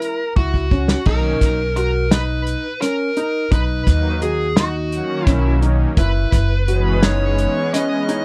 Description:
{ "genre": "progressive instrumental, band music in an uneven meter", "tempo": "171 BPM (eighths)", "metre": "7/8", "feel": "straight", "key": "B major", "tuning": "A4 = 441 Hz", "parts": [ { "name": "dark smooth lead guitar", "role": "melody", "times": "0.0-8.2 s", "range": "F#4 to D#5", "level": "-25 LUFS", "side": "equal", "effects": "overdrive" }, { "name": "dark concert grand piano", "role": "arpeggios", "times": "0.0-8.2 s", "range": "C#4 to F#4", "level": "-27 LUFS", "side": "equal", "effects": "none" }, { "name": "warm soul drum kit", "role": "drums", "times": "0.0-8.2 s", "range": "crash cymbal, hi-hat, kick drum, snare drum", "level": "-20 LUFS", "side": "equal", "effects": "none" }, { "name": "upright bass", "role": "bass", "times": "0.4-7.4 s", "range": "F#1 to D#2", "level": "-21 LUFS", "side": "equal", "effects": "none" }, { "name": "lush unison pad", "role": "accompaniment", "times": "1.1-8.2 s", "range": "D#3 to D#4", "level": "-28 LUFS", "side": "equal", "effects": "chorus" } ], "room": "light reverb", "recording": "none", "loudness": "-18 LUFS", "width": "mono", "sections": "0.0-1.1 A section; 1.1-8.2 B section", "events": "drum fill 0.4-1.1", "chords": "0.0 F#7; 1.1 Bmaj7; 6.0 F#7sus4" }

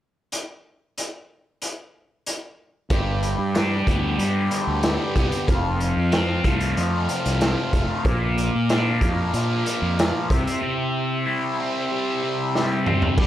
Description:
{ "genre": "psychedelic rock", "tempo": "93 BPM", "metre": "4/4", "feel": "straight", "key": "C mixolydian", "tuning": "A4 = 441 Hz", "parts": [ { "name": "raw garage drum kit", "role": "drums", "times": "0.3-13.3 s", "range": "crash cymbal, hi-hat, kick drum, snare drum, toms", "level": "-24 LUFS", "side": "equal", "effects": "none" }, { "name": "combo organ", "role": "sustained chords", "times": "2.9-13.3 s", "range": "D4 to G5", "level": "-30 LUFS", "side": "right 3 dB", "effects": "none" }, { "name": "fuzz guitar", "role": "riff", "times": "2.9-13.3 s", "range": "F2 to E4", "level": "-24 LUFS", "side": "left 1 dB", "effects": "distortion, phaser" }, { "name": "fuzz fingered electric bass", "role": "bass", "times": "2.9-13.3 s", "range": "F1 to Bb2", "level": "-25 LUFS", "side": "equal", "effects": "overdrive" } ], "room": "studio reverb", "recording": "none", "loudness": "-20 LUFS", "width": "side -12 dB against mid", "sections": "0.3-2.9 A section; 2.9-13.2 B section", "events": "drum fill 12.5-13.2", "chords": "0.3 N.C.; 2.9 G; 5.5 F; 8.1 Bb; 10.3 C" }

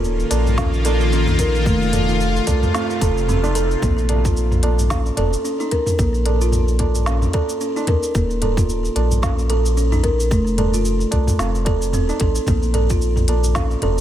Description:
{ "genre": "organic downtempo", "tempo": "111 BPM", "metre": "4/4", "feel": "swing 57% on 16ths", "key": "Bb harmonic minor", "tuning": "A4 = 441 Hz", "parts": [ { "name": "bowed-like drone", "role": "sustained chords", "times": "0.0-3.8 s", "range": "C3 to F4", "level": "-24 LUFS", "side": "left 2 dB", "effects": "built-in reverb, phaser, sidechain pumping" }, { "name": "warm sub bass", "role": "bass", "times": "0.0-14.0 s", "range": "Eb1 to C2", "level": "-19 LUFS", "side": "equal", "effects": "sidechain pumping" }, { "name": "organic electronic drum kit", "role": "drums", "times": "0.0-14.0 s", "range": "hi-hat, shaker, snare drum, toms", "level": "-25 LUFS", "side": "equal", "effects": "none" }, { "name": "buzzing kalimba", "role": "arpeggios", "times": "0.3-14.0 s", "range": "A3 to Bb4", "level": "-21 LUFS", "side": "right 1 dB", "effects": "low-pass filter, ping-pong delay" }, { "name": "tabla", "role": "percussion", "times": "0.3-13.9 s", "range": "none", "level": "-30 LUFS", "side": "right 1 dB", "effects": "none" }, { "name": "electronic kick drum", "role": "drums", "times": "0.6-13.7 s", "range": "none", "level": "-20 LUFS", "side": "equal", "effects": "none" } ], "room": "light reverb, digital ambience", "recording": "none", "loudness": "-16 LUFS", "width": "side -11 dB against mid", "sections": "0.0-3.8 A section; 3.8-14.0 B section", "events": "kick drops out 3.3-3.8", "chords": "0.0 Ebsus2; 1.7 F; 3.8 Bbm; 8.2 Eb5; 10.3 F; 12.5 Bb5" }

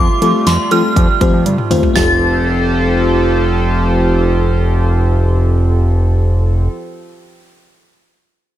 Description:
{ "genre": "synth-pop", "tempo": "121 BPM", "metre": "4/4", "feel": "straight", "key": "F major", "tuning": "A4 = 435 Hz", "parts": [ { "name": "synth chime", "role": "melody", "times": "0.0-6.7 s", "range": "C6 to A6", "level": "-19 LUFS", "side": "right 1 dB", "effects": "ensemble chorus, digital delay" }, { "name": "chorused pulse-width pad", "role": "sustained chords", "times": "0.0-6.7 s", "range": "F3 to C5", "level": "-18 LUFS", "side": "right 2 dB", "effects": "none" }, { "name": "fat analog bass", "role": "bass", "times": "0.0-6.7 s", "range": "F1 to F3", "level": "-14 LUFS", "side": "equal", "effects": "none" }, { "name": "FM electric piano with soft pad layer", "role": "accompaniment", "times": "0.2-6.7 s", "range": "A3 to C5", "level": "-20 LUFS", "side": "left 4 dB", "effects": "chorus" }, { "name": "pop drum kit", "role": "drums", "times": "0.2-2.1 s", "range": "hi-hat, kick drum, snare drum, toms", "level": "-16 LUFS", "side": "equal", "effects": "none" } ], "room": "light reverb", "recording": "none", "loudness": "-11 LUFS", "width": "side -12 dB against mid", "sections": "0.0-2.0 A section; 2.0-5.9 B section", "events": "drum fill 1.5-2.0", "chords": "0.0 Fadd9" }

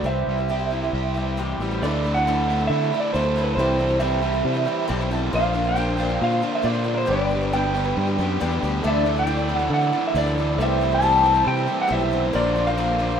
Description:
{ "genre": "folk rock and heartland rock", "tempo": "137 BPM", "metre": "4/4", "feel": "straight", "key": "unclear", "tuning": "A4 = 440 Hz", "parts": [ { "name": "electric slide guitar", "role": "melody", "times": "0.0-13.2 s", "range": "Bb4 to A5", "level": "-23 LUFS", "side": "right 1 dB", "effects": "tape echo" }, { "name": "picked swing-style acoustic guitar", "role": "accompaniment", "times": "0.0-13.2 s", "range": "C3 to D5", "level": "-29 LUFS", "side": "left 6 dB", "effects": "none" }, { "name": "raw garage guitar", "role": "riff", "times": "0.0-13.2 s", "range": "G2 to G4", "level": "-25 LUFS", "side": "right 1 dB", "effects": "overdrive" }, { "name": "fingered electric bass", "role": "bass", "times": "0.0-13.2 s", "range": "G1 to D3", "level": "-25 LUFS", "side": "equal", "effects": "none" }, { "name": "warm baby grand piano", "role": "accompaniment", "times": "1.8-13.2 s", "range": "D4 to A5", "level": "-36 LUFS", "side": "right 2 dB", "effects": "none" }, { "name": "mellow tonewheel organ", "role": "sustained chords", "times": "8.8-13.2 s", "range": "C5 to E6", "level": "-36 LUFS", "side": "equal", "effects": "slow rotary speaker, chorus vibrato" } ], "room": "moderate studio reverb, RT60 0.7 s", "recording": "rough home demo mix", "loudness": "-19 LUFS", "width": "side -8 dB against mid", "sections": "0.0-1.8 A section; 1.8-13.2 B section", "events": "grand piano fill 4.5-5.3", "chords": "0.1 C; 1.8 Dsus2; 3.6 C6; 5.3 Bbadd9; 7.1 G; 8.8 Dsus2; 10.6 C6; 12.3 Bbadd9" }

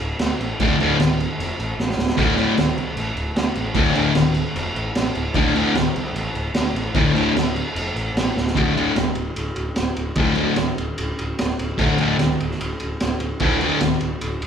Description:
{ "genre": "garage rock duo or trio", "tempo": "150 BPM", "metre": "4/4", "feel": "straight", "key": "D minor", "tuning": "A4 = 440 Hz", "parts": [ { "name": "fuzz picked electric bass", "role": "bass", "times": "0.0-14.5 s", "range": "D1 to D2", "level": "-27 LUFS", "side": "equal", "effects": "overdrive" }, { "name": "crunchy breakbeat drum kit", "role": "drums", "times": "0.2-14.5 s", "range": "crash cymbal, kick drum, ride cymbal, snare drum", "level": "-23 LUFS", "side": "right 1 dB", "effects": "none" }, { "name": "thick fuzz guitar", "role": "riff", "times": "0.6-13.8 s", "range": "D2 to D3", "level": "-19 LUFS", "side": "left 1 dB", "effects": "distortion" } ], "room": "moderate large studio reverb, RT60 1.1 s", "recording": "band playing live in one room", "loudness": "-18 LUFS", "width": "side -8 dB against mid", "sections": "0.0-8.6 A section; 8.6-14.5 B section", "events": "drum fill 1.8-2.2, 8.4", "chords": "0.0 D5" }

